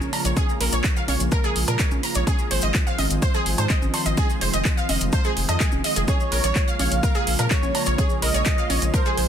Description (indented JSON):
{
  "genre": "progressive house",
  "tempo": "126 BPM",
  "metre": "4/4",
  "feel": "straight",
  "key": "Bb minor",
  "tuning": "A4 = 440 Hz",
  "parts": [
    { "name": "airy breathy pad", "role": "sustained chords", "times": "0.0-9.3 s", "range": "Db3 to F4", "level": "-30 LUFS", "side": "left 1 dB", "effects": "chorus, vintage 12-bit sampler grit, sidechain pumping" },
    { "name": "saturated sub bass", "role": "bass", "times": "0.0-9.3 s", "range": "F1 to Bb2", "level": "-24 LUFS", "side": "equal", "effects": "sidechain pumping" },
    { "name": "cabasa", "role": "percussion", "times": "0.0-9.2 s", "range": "none", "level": "-34 LUFS", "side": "left 5 dB", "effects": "none" },
    { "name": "congas and cowbell", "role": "percussion", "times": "0.0-9.0 s", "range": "none", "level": "-33 LUFS", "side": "right 2 dB", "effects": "overdrive, sidechain pumping on perc" },
    { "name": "wide unison pluck", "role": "arpeggios", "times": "0.1-9.1 s", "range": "Ab4 to C6", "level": "-26 LUFS", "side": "right 2 dB", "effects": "lush chorus, sidechain pumping, tape echo" },
    { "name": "pop drum kit", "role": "drums", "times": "0.1-9.3 s", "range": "handclaps, hi-hat", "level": "-27 LUFS", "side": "right 1 dB", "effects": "overdrive, sidechain pumping on hats, sidechain pumping on toms" },
    { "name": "electronic kick drum", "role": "drums", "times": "0.4-9.0 s", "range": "none", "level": "-22 LUFS", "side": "equal", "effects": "overdrive" },
    { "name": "soft supersaw", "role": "melody", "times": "6.1-9.3 s", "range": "C5 to F5", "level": "-27 LUFS", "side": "right 2 dB", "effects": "cassette tape, sidechain pumping, tape echo" }
  ],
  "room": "digital ambience",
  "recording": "dense, heavily limited modern master",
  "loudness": "-19 LUFS",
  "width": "side -9 dB against mid",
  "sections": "0.0-9.3 A section",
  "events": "none",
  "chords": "0.0 Bbm7; 2.3 Ab6; 4.2 Fm7; 6.1 Bbm7"
}